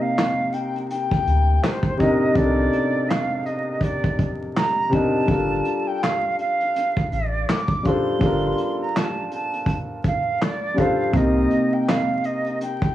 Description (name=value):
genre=lo-fi hip hop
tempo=82 BPM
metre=4/4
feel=swing 58% on 16ths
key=unclear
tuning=A4 = 439 Hz
part: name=concert flute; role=melody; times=0.0-12.9 s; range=C5 to D6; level=-25 LUFS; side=right 1 dB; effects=analog delay
part: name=warm upright piano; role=accompaniment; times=0.0-12.9 s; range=C3 to C5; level=-23 LUFS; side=left 1 dB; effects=cassette tape
part: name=vintage brush drum kit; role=drums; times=0.2-12.9 s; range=handclaps, hi-hat, kick drum, snare drum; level=-24 LUFS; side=equal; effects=none
part: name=warm sub bass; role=bass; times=1.3-11.5 s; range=G1 to D2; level=-22 LUFS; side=equal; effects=tube saturation
room=light reverb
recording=dry, gritty hardware recording, vinyl crackle, small room ambience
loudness=-19 LUFS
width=side -13 dB against mid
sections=0.0-12.9 A section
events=none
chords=0.0 Cm9; 5.3 Gm9; 11.1 Cm7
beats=0.16 0.89 1.62 | 2.35 3.09 3.82 4.55 | 5.28 6.01 6.75 7.48 | 8.21 8.94 9.67 10.40 | 11.13 11.87 12.60